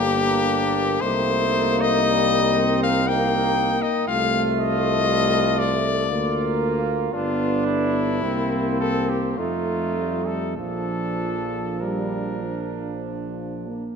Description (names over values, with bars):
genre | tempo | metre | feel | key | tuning
classical, hymn-like piece for brass band | 48-61 BPM | 3/4 | rubato | Bb major | A4 = 440 Hz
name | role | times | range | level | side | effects
mellow cornet | melody | 0.0-13.0 s | E4 to G5 | -24 LUFS | left 6 dB | none
warm flugelhorn | second line | 0.0-13.9 s | C4 to F4 | -29 LUFS | right 10 dB | none
clear trombone | accompaniment | 0.0-13.7 s | F3 to D4 | -28 LUFS | right 4 dB | none
mellow trombone section | accompaniment | 0.0-14.0 s | F3 to B3 | -27 LUFS | left 2 dB | none
mellow tuba | bass | 0.0-13.9 s | G1 to F2 | -27 LUFS | right 1 dB | none
room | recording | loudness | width
moderate scoring stage reverb, RT60 1.8 s | none | -20 LUFS | side -6 dB against mid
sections
0.0-14.0 A section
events
none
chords
0.0 Gm; 1.0 Cm7; 4.1 F7/C; 6.1 Bb/D; 7.1 G7; 8.2 C7; 9.4 F7; 10.6 Bb